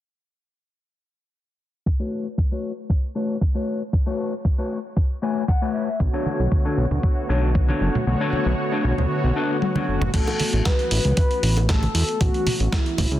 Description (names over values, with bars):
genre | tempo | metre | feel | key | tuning
nu-disco, nu disco | 116 BPM | 4/4 | straight | A major | A4 = 439 Hz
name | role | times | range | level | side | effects
electronic kick drum | drums | 1.9-13.1 s | none | -21 LUFS | equal | none
mellow electric guitar | riff | 2.0-10.0 s | A3 to G#5 | -27 LUFS | left 3 dB | lush chorus, low-pass filter, tape echo
mellow synth brass | accompaniment | 6.0-13.2 s | D3 to C#5 | -26 LUFS | equal | chorus, tape echo
fat analog bass | bass | 6.0-13.2 s | F#1 to E2 | -21 LUFS | equal | none
congas and bongos | percussion | 6.3-13.2 s | none | -29 LUFS | right 2 dB | none
soft octave-layered synth lead | melody | 9.6-13.2 s | E4 to B4 | -27 LUFS | left 1 dB | chorus, tape echo
dusty soul sampler-style drum kit | drums | 9.6-13.2 s | crash cymbal, hi-hat, snare drum, toms | -27 LUFS | left 1 dB | none
room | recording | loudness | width
light reverb, digital ambience | dense, heavily limited modern master, low-pass filter | -20 LUFS | side -13 dB against mid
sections
1.9-10.1 A section; 10.1-13.2 B section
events
filter sweep on clean electric guitar 1.9-10.1; filter sweep 1.9-10.1; clean electric guitar fill 5.0-6.0; kick drops out 8.1-10.1; drum fill 9.6-10.1; filter sweep on analog polysynth 10.1-13.2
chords
1.9 A69; 6.0 Bm9; 10.1 A69